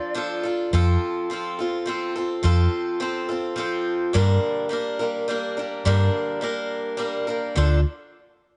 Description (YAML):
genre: folk rock and heartland rock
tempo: 106 BPM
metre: 3/4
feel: straight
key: unclear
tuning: A4 = 439 Hz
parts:
  - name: picked swing-style acoustic guitar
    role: accompaniment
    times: 0.0-7.8 s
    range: G2 to Bb4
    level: -26 LUFS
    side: equal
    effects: none
  - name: fingered electric bass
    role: bass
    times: 0.7-7.8 s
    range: D2 to G2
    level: -20 LUFS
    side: equal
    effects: none
room: light reverb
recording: nothing above 10.5 kHz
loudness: -24 LUFS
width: mono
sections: 0.7-7.6 A section; 7.6-8.6 B section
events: none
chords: 0.0 Dm; 0.7 F; 4.1 Gm; 7.6 Dm